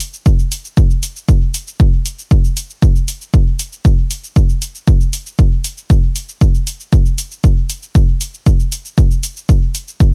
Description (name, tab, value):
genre	techno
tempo	117 BPM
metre	4/4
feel	straight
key	none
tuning	none
part	electronic hi-hat and cabasa	drums	0.0-10.1 s	none	-26 LUFS	equal	none
part	electronic kick drum	drums	0.3-10.1 s	none	-13 LUFS	equal	none
room	little or no reverb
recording	none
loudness	-15 LUFS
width	mono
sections	0.0-10.1 A section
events	none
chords	none